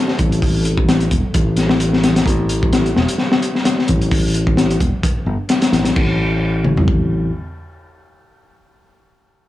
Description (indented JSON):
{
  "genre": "breakbeat, breaks",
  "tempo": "130 BPM",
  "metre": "4/4",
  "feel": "swing 56% on 16ths",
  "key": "A minor",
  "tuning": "A4 = 436 Hz",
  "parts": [
    { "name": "warbly tape-like pad", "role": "sustained chords", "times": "0.0-2.2 s", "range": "A3 to A4", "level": "-32 LUFS", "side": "right 1 dB", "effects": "none" },
    { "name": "crunchy breakbeat drum kit", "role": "drums", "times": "0.1-7.0 s", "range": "crash cymbal, hi-hat, kick drum, snare drum, toms", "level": "-16 LUFS", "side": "left 1 dB", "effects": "none" },
    { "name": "fingered electric bass", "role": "bass", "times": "0.2-7.3 s", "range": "E1 to A1", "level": "-17 LUFS", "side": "equal", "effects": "low-pass filter" }
  ],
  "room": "small room ambience",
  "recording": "dry, gritty hardware recording",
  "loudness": "-14 LUFS",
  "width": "side -15 dB against mid",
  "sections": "0.0-6.0 A section; 6.0-9.5 B section",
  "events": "none",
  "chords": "0.0 Am; 6.0 N.C."
}